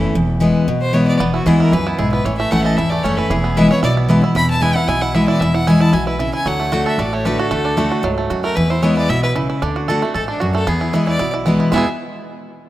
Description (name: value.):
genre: bluegrass.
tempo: 228 BPM.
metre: 4/4.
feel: straight.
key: E mixolydian.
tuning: A4 = 440 Hz.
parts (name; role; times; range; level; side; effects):
picked steel-string acoustic guitar; accompaniment; 0.0-11.8 s; E2 to F#4; -16 LUFS; left 1 dB; none.
upright bass; bass; 0.0-11.9 s; E1 to E2; -24 LUFS; right 1 dB; none.
rich fiddle; melody; 0.8-11.9 s; D4 to B5; -22 LUFS; left 1 dB; none.
bluegrass banjo; melody; 1.2-11.9 s; E3 to A4; -22 LUFS; right 5 dB; none.
room: moderate lush hall reverb, RT60 2.4 s.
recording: rough home demo mix.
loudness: -14 LUFS.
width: side -14 dB against mid.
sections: 0.0-9.6 A section; 9.6-11.7 B section.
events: none.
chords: 0.2 E; 2.3 A; 3.3 E; 6.5 D; 8.6 E; 9.6 D; 10.7 E.